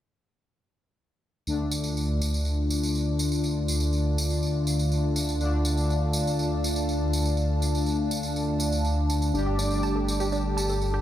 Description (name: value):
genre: melodic techno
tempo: 122 BPM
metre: 4/4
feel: straight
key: D minor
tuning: A4 = 440 Hz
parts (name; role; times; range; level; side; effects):
- dark analog pad; sustained chords; 1.5-11.0 s; G3 to A5; -35 LUFS; right 1 dB; wide subtle chorus
- analog synth brass; stabs; 1.5-11.0 s; D3 to G4; -29 LUFS; left 2 dB; chorus, dub echo
- dark detuned saw bass; bass; 1.5-11.0 s; G1 to D2; -28 LUFS; equal; none
- analog drone; drone; 4.0-11.0 s; D3 to A3; -36 LUFS; equal; chorus
- tambourine; percussion; 1.5-10.9 s; none; -34 LUFS; right 1 dB; none
- warbly tape-like pad; texture; 1.8-11.0 s; F4 to A5; -36 LUFS; right 1 dB; chorus, built-in reverb
- wide unison lead; melody; 9.3-10.2 s; D4; -32 LUFS; equal; lush chorus, dub echo
- airy dreamy lead; second line; 9.3-10.2 s; D5; -37 LUFS; right 1 dB; chorus, vintage 12-bit sampler grit, dub echo
- tight sequenced synth; arpeggios; 9.5-11.0 s; D4 to A5; -34 LUFS; right 3 dB; chorus, phaser, dub echo
room: light reverb, digital ambience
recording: played on a big sound system in a bare room, stone room reverb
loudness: -24 LUFS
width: side -12 dB against mid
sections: 1.5-11.0 A section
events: filter sweep on analog polysynth 1.5-11.0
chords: 1.5 Dm; 9.3 Gsus2